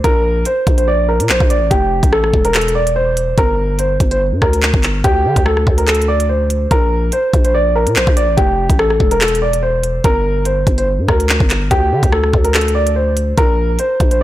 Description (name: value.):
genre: hip hop, drill.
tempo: 144 BPM.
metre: 4/4.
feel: half-time.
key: unclear.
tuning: A4 = 439 Hz.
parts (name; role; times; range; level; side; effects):
dark baby grand piano; melody; 0.0-14.2 s; G4 to D5; -16 LUFS; right 1 dB; low-pass filter.
growling 808-style bass; bass; 0.0-14.2 s; E1 to D3; -17 LUFS; equal; none.
drill drum kit; drums; 0.0-14.2 s; handclaps, hi-hat, kick drum, rim click; -15 LUFS; equal; none.
room: light reverb.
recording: blown-out, overdriven recording, overdrive.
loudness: -12 LUFS.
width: side -14 dB against mid.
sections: 0.0-14.2 A section.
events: none.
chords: 0.0 Bbadd9; 1.7 F; 3.4 Gm; 5.0 D7sus4; 6.7 Bbadd9; 8.4 F; 10.0 Gm; 11.7 D7sus4; 13.4 Bbsus2.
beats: | 0.04 0.46 0.88 1.29 | 1.71 2.13 2.54 2.96 | 3.38 3.79 4.21 4.63 | 5.04 5.46 5.88 6.29 | 6.71 7.13 7.54 7.96 | 8.38 8.79 9.21 9.63 | 10.04 10.46 10.88 11.29 | 11.71 12.13 12.54 12.96 | 13.38 13.79 14.21.